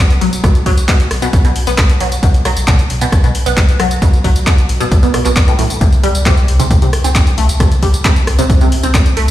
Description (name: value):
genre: driving peak-time techno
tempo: 134 BPM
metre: 4/4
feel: straight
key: unclear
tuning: A4 = 440 Hz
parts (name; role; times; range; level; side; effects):
- punchy analog drum machine; drums; 0.1-9.3 s; handclaps, hi-hat, rim click, tambourine; -19 LUFS; equal; overdrive
- resonant blip pluck; riff; 0.2-9.3 s; A2 to C4; -17 LUFS; equal; phaser, lush chorus, sidechain pumping, ping-pong delay
- warm sub bass; bass; 0.2-9.3 s; B1 to C2; -16 LUFS; equal; tube saturation, sidechain pumping, low-pass filter
- electronic kick drum; drums; 0.4-9.0 s; none; -11 LUFS; equal; none
room: light reverb, digital ambience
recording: played on a big sound system in a bare room, stone room reverb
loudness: -10 LUFS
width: side -14 dB against mid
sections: 0.0-9.3 A section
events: none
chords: 0.0 B5; 5.8 C5